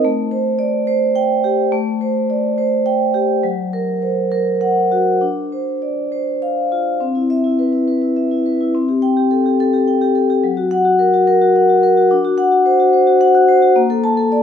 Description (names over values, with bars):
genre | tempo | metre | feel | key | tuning
classical, contemporary piece for solo vibraphone | 65-74 BPM (dotted quarters) | 6/8 | rubato | C lydian | A4 = 440 Hz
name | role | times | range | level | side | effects
vibraphone with medium mallets | solo | 0.0-14.4 s | F#3 to A5 | -13 LUFS | left 1 dB | none
room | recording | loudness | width
moderate recital hall reverb, RT60 1.5 s | minimal, uncompressed stereo recording | -13 LUFS | side -8 dB against mid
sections
0.0-7.0 A section; 7.0-14.4 B section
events
none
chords
0.0 Gsus24/A; 3.4 F#; 5.2 Dm7; 7.0 Cmaj7; 8.7 Am7/C; 10.4 F#; 12.1 D7; 13.8 Bbmaj7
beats
| 0.04 0.86 | 1.72 2.57 | 3.43 4.30 | 5.21 6.11 | 7.01 7.87 | 8.74 9.59 | 10.43 11.27 | 12.11 12.93 | 13.76